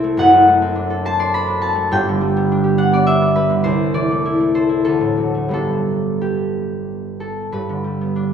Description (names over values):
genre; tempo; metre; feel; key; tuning
classical, solo harp piece; 84-107 BPM; 3/4; rubato; G major; A4 = 438 Hz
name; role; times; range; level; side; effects
concert harp; solo; 0.0-8.3 s; F#1 to C6; -15 LUFS; equal; none
room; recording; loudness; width
moderate scoring stage reverb, RT60 1.6 s; minimal, uncompressed stereo recording; -15 LUFS; side -8 dB against mid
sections
0.0-7.5 A section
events
none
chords
0.2 D7/F#; 1.9 G; 3.6 Am/C; 4.8 D; 5.5 G